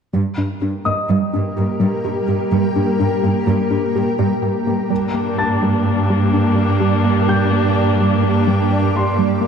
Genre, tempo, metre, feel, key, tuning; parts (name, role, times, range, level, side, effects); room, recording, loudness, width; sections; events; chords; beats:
cinematic; 126 BPM; 5/4; straight; G minor; A4 = 440 Hz
tight sequenced synth; arpeggios; 0.1-9.5 s; G3 to G4; -23 LUFS; equal; chorus, ping-pong delay
rich studio cello section; bass; 0.1-9.5 s; G2; -19 LUFS; right 2 dB
granular cloud pad; sustained chords; 0.9-9.5 s; G3 to D5; -20 LUFS; left 1 dB; built-in reverb
clear grand piano; texture; 0.9-9.5 s; Eb5 to A6; -27 LUFS; left 2 dB; ping-pong delay
warm chamber viola section; accompaniment; 4.9-9.5 s; Bb3 to D4; -21 LUFS; left 1 dB
moderate scoring stage reverb, RT60 1.9 s; dark, warm production; -15 LUFS; side -7 dB against mid
0.1-4.9 A section; 4.9-9.5 B section
build-up 4.9-9.5
0.1 Gm
| 0.14 0.62 1.09 1.57 2.04 | 2.52 3.00 3.47 3.95 4.43 | 4.90 5.38 5.85 6.33 6.81 | 7.28 7.76 8.23 8.71 9.19